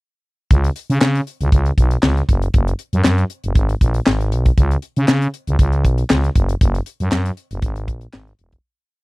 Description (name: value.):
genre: early-eighties boogie funk.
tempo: 118 BPM.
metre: 4/4.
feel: straight.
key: unclear.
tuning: A4 = 440 Hz.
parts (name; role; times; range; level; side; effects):
growling FM bass; bass; 0.5-8.6 s; E1 to C#3; -17 LUFS; equal; none.
tight funk drum kit; drums; 0.5-8.6 s; handclaps, hi-hat, kick drum, snare drum; -16 LUFS; equal; none.
group handclap; percussion; 1.0-8.3 s; none; -26 LUFS; right 3 dB; none.
room: little or no reverb.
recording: dry, close 1970s-style studio recording.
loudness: -15 LUFS.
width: side -24 dB against mid.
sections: 0.5-8.6 breakdown.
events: fade-out 6.6-8.6.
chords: none.